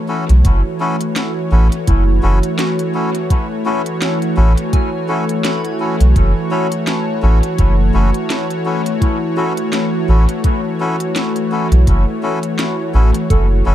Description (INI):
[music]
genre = ambient dub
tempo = 84 BPM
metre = 4/4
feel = swing 56% on 16ths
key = F# minor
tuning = A4 = 440 Hz
[part]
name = warm analog pad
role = sustained chords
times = 0.0-13.7 s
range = E3 to C#5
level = -19 LUFS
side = equal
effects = chorus
[part]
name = soft synth bell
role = arpeggios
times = 0.0-13.7 s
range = E4 to B5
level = -27 LUFS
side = right 1 dB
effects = chorus, phaser, dub echo
[part]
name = melodica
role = stabs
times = 0.1-13.7 s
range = C#4 to A4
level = -23 LUFS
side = left 2 dB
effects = dub echo
[part]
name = soft dub sub bass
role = bass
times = 0.3-13.7 s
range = F#1 to B1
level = -11 LUFS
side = equal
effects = tube saturation
[part]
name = organic electronic drum kit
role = drums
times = 0.3-13.5 s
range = hi-hat, snare drum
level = -24 LUFS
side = equal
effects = dub echo
[part]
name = electronic kick drum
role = drums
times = 0.5-13.5 s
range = none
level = -14 LUFS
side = equal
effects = none
[sound]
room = digital ambience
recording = dark, warm production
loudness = -13 LUFS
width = side -12 dB against mid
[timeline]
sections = 0.0-13.7 A section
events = none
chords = 0.0 F#m7